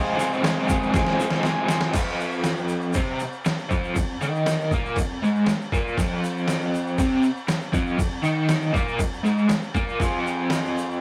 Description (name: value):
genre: garage rock duo or trio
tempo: 119 BPM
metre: 4/4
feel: straight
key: F minor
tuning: A4 = 441 Hz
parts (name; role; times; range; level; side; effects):
- combo organ; sustained chords; 0.0-1.9, 10.0-10.9 s; Ab4 to C6; -32 LUFS; equal; none
- raw garage guitar; riff; 0.0-11.0 s; F2 to Ab4; -25 LUFS; equal; overdrive, tremolo
- tube shaker; percussion; 0.2-11.0 s; none; -45 LUFS; equal; none
- boom bap sampler-style drum kit; drums; 0.4-10.6 s; crash cymbal, kick drum, snare drum; -29 LUFS; equal; overdrive
room: moderate studio reverb, RT60 0.6 s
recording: rough rehearsal-room recording, tube saturation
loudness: -24 LUFS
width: mono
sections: 0.0-1.9 A section; 1.9-11.0 B section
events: transistor combo organ fill 0.4-1.9; drum fill 0.9-1.9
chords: 0.0 Fm